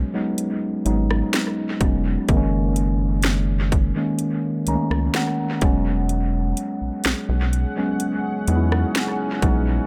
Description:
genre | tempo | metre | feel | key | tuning
contemporary R&B | 63 BPM | 4/4 | straight | unclear | A4 = 445 Hz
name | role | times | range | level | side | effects
mellow tine electric piano | accompaniment | 0.0-9.9 s | D#3 to A#5 | -25 LUFS | equal | dub echo
rubbery square bass | bass | 0.0-9.8 s | E1 to E2 | -24 LUFS | equal | none
trap drum kit | drums | 0.4-9.6 s | hi-hat, kick drum, rim click, snare drum | -26 LUFS | equal | dub echo
deep dark ambient pad | sustained chords | 6.8-9.9 s | C#4 to F#5 | -33 LUFS | equal | chorus, built-in reverb
room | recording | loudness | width
little or no reverb | echo-heavy mix | -22 LUFS | mono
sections
0.0-9.9 A section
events
tine electric piano fill 4.2-6.1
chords
0.0 E69; 2.3 F#6; 5.6 E69

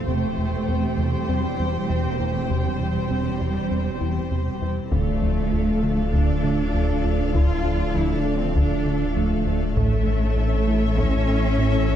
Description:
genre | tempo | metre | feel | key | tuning
cinematic, hybrid orchestral and electronic film score | 99 BPM | 4/4 | straight | D minor | A4 = 436 Hz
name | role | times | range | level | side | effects
warm symphonic violin section | second line | 0.0-12.0 s | C5 to G5 | -34 LUFS | left 6 dB | none
rich symphonic viola section | accompaniment | 0.0-12.0 s | G4 to C5 | -35 LUFS | right 3 dB | none
granular cloud pad | sustained chords | 0.0-12.0 s | E3 to C5 | -32 LUFS | left 1 dB | built-in reverb
rich studio cello section | bass | 0.0-12.0 s | G3 to F4 | -27 LUFS | right 2 dB | none
rich symphonic double bass section | bass | 0.0-12.0 s | E1 to D2 | -29 LUFS | right 4 dB | none
tight sequenced synth | arpeggios | 0.1-12.0 s | C3 to E4 | -32 LUFS | equal | chorus, ping-pong delay
round analog bass | riff | 0.1-12.0 s | D2 to A3 | -27 LUFS | right 1 dB | none
rich studio violin section | melody | 4.9-12.0 s | E5 to F5 | -35 LUFS | left 7 dB | none
clear trombone section | sustained chords | 4.9-12.0 s | A2 to A3 | -35 LUFS | right 2 dB | none
dark French horn section | sustained chords | 4.9-12.0 s | C#4 to F4 | -34 LUFS | left 5 dB | none
pure sine sub bass | bass | 4.9-12.0 s | D1 to A1 | -25 LUFS | left 1 dB | none
taiko ensemble | drums | 4.9-11.5 s | none | -26 LUFS | left 1 dB | none
room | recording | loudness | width
moderate scoring stage reverb, RT60 2.1 s | dark, warm production | -20 LUFS | side -10 dB against mid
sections
0.0-4.9 A section; 4.9-12.0 B section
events
none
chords
0.1 C/E; 4.9 Dm; 9.8 A

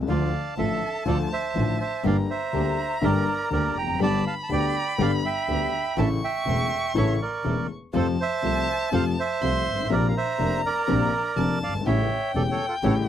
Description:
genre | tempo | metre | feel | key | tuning
tango | 122 BPM | 4/4 | rubato | unclear | A4 = 440 Hz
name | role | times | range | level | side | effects
warm concert grand piano | accompaniment | 0.0-13.0 s | E1 to G4 | -26 LUFS | left 6 dB | none
dark double bass | bass | 0.0-13.0 s | E1 to F2 | -28 LUFS | right 2 dB | none
bandoneon | melody | 0.1-13.0 s | F4 to Bb5 | -27 LUFS | right 5 dB | none
warm violin | second line | 0.1-13.1 s | G5 to C#6 | -32 LUFS | left 3 dB | none
dark chamber string section | stabs | 0.1-13.0 s | A3 to Bb4 | -33 LUFS | right 6 dB | none
room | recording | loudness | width
light reverb | dry, close 1970s-style studio recording | -22 LUFS | side -10 dB against mid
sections
0.0-13.1 A section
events
none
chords
0.1 Dm; 2.0 Gm; 4.0 G; 6.0 A; 7.9 F; 9.9 Bbadd9; 11.9 A7

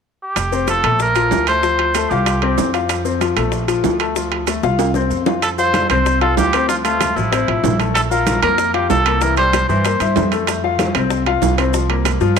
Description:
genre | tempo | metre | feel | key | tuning
latin, salsa | 190 BPM | 4/4 | straight | F major | A4 = 441 Hz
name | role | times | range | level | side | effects
clear trumpet | melody | 0.2-2.7, 5.4-10.3 s | E4 to C5 | -19 LUFS | right 2 dB | none
upright bass | bass | 0.4-12.4 s | F1 to G2 | -21 LUFS | right 2 dB | none
bongos | percussion | 0.4-12.4 s | none | -27 LUFS | left 10 dB | none
maracas | percussion | 0.4-12.4 s | none | -32 LUFS | right 17 dB | none
timbales | percussion | 0.4-12.4 s | none | -23 LUFS | right 14 dB | none
clear grand piano | accompaniment | 0.5-12.4 s | E3 to F5 | -19 LUFS | left 9 dB | none
congas | percussion | 5.4-12.4 s | none | -26 LUFS | equal | none
room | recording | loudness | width
moderate plate reverb, RT60 3.9 s | 1960s-style stereo with parts hard left and right | -14 LUFS | side -6 dB against mid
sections
0.4-5.4 A section; 5.4-12.4 B section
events
drum fill 4.6-5.4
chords
0.4 F; 1.0 Bbmaj7; 1.6 Dm7; 2.3 Csus4; 2.9 F; 3.5 Bbmaj7; 4.2 Dm7; 4.8 Csus4; 5.4 F5; 6.7 Dm9; 8.0 Bb5; 9.2 C7; 10.5 F; 11.7 C7sus4

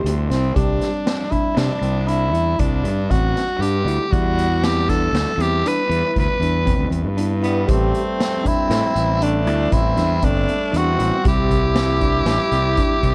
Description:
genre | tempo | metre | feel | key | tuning
progressive instrumental, band music in an uneven meter | 118 BPM | 7/4 | straight | C lydian | A4 = 440 Hz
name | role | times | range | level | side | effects
growling tenor saxophone | melody | 0.0-13.1 s | B3 to B4 | -24 LUFS | equal | delay
clear flugelhorn | second line | 0.0, 7.4-13.1 s | G3 to E4 | -29 LUFS | equal | delay
overdriven tine electric piano | accompaniment | 0.0-13.1 s | G3 to B4 | -31 LUFS | equal | none
bell-like tine electric piano | arpeggios | 0.0-13.1 s | G3 to G4 | -29 LUFS | equal | none
fuzz fingered electric bass | bass | 0.0-13.1 s | G1 to C3 | -24 LUFS | equal | overdrive
street-band drum kit | drums | 0.1-13.1 s | hi-hat, kick drum, snare drum | -25 LUFS | equal | none
room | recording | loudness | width
light reverb, small room ambience | worn, warbling old tape, cassette tape, warbly pitch drift | -19 LUFS | mono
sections
0.6-13.1 A section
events
none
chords
0.0 C; 0.6 Csus2; 4.1 Em; 7.7 Am7; 11.2 C

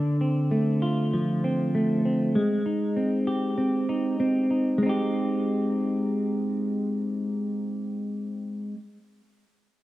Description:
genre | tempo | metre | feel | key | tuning
dream pop | 98 BPM | 4/4 | straight | Ab lydian | A4 = 438 Hz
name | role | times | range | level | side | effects
clean electric guitar | arpeggios | 0.0-8.8 s | D3 to G4 | -24 LUFS | equal | analog chorus, tape echo
room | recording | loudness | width
wet studio reverb, RT60 0.6 s | rough home demo mix | -24 LUFS | side -16 dB against mid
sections
0.0-4.8 A section; 4.8-7.3 B section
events
none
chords
0.0 Dm7; 2.4 Abmaj7

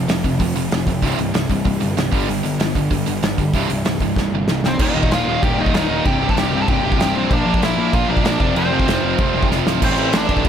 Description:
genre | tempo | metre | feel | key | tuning
punk rock | 191 BPM | 4/4 | straight | C major | A4 = 442 Hz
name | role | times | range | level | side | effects
crunchy overdriven guitar | riff | 0.0-10.5 s | C2 to Bb3 | -24 LUFS | left 10 dB | none
thick fuzz guitar | riff | 0.0-10.5 s | C2 to A4 | -26 LUFS | equal | distortion
tight distorted guitar | riff | 0.0-10.5 s | C2 to Bb3 | -23 LUFS | right 12 dB | distortion
fuzz picked electric bass | bass | 0.0-10.5 s | C1 to Bb1 | -24 LUFS | equal | overdrive
loose indie drum kit | drums | 0.1-10.5 s | crash cymbal, hi-hat, kick drum, snare drum | -20 LUFS | equal | none
nasal lead guitar with a parked wah | melody | 4.7-10.5 s | C4 to A5 | -22 LUFS | equal | overdrive, digital delay
room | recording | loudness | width
little or no reverb | none | -16 LUFS | side -8 dB against mid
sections
0.0-4.8 A section; 4.8-9.8 B section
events
drum fill 4.2-4.8, 9.5-9.8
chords
0.0 F; 1.0 C; 2.1 G; 3.5 C; 4.8 Eb; 6.1 C5; 7.3 Bb; 8.4 F5; 9.8 Am

